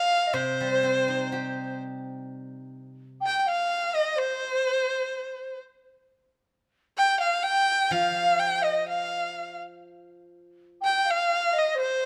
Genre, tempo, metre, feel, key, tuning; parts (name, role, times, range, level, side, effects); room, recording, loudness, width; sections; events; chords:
chinese traditional, Chinese chamber ensemble; 63 BPM; 2/4; rubato; C yu mode; A4 = 439 Hz
rich erhu; melody; 0.0-12.1 s; C5 to G5; -27 LUFS; equal
mellow large dizi; second line; 0.0-12.1 s; C5 to G5; -31 LUFS; equal
steel-string zither; accompaniment; 0.3-3.2, 7.9-10.8 s; C3 to G4; -34 LUFS; equal
moderate recital hall reverb, RT60 1.5 s; close, detailed microphones; -26 LUFS; mono
0.0-2.3 A section; 2.3-12.1 B section